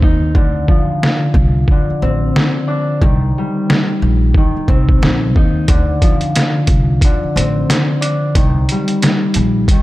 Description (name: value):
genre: hip hop, boom-bap hip-hop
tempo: 90 BPM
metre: 4/4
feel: swing 63% on 16ths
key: unclear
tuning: A4 = 440 Hz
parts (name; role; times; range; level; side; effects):
- concert harp; accompaniment; 0.0-9.8 s; D3 to Eb4; -17 LUFS; left 1 dB; high-pass filter, low-pass filter
- upright bass; bass; 0.0-9.6 s; A1 to Eb2; -16 LUFS; equal; none
- trip hop sampler-style drum kit; drums; 0.0-9.8 s; hi-hat, kick drum, snare drum; -14 LUFS; equal; overdrive
room: light reverb, small room reverb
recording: dark, warm production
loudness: -12 LUFS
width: side -17 dB against mid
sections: 0.0-9.8 A section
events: break 0.0-5.7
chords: 0.4 Dm7; 3.0 Cm7; 5.7 Dm7; 8.4 Cm7